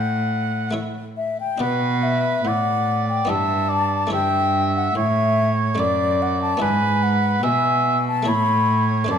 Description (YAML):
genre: classical, baroque-style sonata movement with continuo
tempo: 72 BPM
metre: 3/4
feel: straight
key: unclear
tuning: A4 = 438 Hz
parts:
  - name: baroque flute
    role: melody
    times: 0.0-9.2 s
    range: D5 to B5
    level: -22 LUFS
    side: left 5 dB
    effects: none
  - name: clear oboe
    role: second line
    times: 0.0-9.2 s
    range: B4 to F#5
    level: -24 LUFS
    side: right 4 dB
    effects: none
  - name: buff-stop harpsichord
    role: accompaniment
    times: 0.0-9.2 s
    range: F#2 to D5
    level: -30 LUFS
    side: left 1 dB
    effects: none
  - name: warm cello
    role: bass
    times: 0.0-9.2 s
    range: F#2 to B2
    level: -22 LUFS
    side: right 2 dB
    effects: none
room: wet recital hall reverb, RT60 1.6 s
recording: none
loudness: -18 LUFS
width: side -8 dB against mid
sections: 0.0-1.6 A section; 1.6-9.2 B section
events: none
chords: 0.0 D/A; 0.7 A; 1.6 Bm; 3.3 Em7/G; 4.1 A7/G; 5.8 D/F#; 6.6 E7/G#; 8.3 A